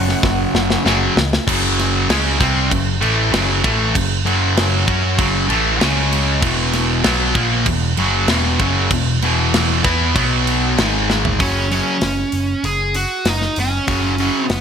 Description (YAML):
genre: hard rock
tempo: 97 BPM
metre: 4/4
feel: straight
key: unclear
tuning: A4 = 440 Hz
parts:
  - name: smooth overdriven lead guitar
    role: melody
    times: 0.0-0.8, 11.4-14.6 s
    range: C#4 to F#5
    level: -21 LUFS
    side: right 2 dB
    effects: none
  - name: sludgy distorted guitar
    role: riff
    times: 0.0-14.4 s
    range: E2 to F#4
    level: -17 LUFS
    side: equal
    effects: overdrive
  - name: overdriven picked electric bass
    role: bass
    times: 0.0-14.6 s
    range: E1 to F#2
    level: -20 LUFS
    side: equal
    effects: none
  - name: tight metal drum kit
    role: drums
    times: 0.1-14.6 s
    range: crash cymbal, hi-hat, kick drum, snare drum, toms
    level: -20 LUFS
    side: equal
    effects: none
room: light reverb, studio ambience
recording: bright 1980s-style digital production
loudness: -14 LUFS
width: side -7 dB against mid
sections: 0.0-1.5 A section; 1.5-11.4 B section; 11.4-14.6 C section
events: drum fill 0.2-1.5, 11.1-11.4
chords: 0.0 F#5; 5.8 C#5; 6.4 E5; 10.2 B5; 10.8 G#5; 11.4 F#5